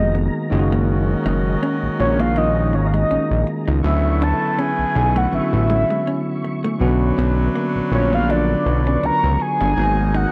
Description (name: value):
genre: R&B, neo-soul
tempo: 81 BPM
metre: 4/4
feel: swing 55% on 16ths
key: F# major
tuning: A4 = 440 Hz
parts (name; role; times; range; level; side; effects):
- soft octave-layered synth lead; melody; 0.0-10.3 s; C#5 to A#5; -24 LUFS; equal; chorus, tape echo
- hollow-body jazz guitar; second line; 0.0-10.3 s; G#3 to D#4; -30 LUFS; equal; none
- tine electric piano; accompaniment; 0.0-10.3 s; C#3 to F#4; -25 LUFS; equal; none
- mellow tonewheel organ; sustained chords; 0.0-10.3 s; F#3 to C#6; -37 LUFS; equal; chorus vibrato, slow rotary speaker
- warm horn section; stabs; 0.0-10.3 s; C#3 to B4; -32 LUFS; equal; none
- fat analog bass; bass; 0.0-10.3 s; E#1 to D2; -21 LUFS; equal; none
room: light reverb, digital ambience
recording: dark, warm production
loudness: -19 LUFS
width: mono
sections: 0.0-10.3 A section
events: none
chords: 0.5 F#69; 3.8 Dmaj13; 6.8 Bmadd9; 9.8 G#m9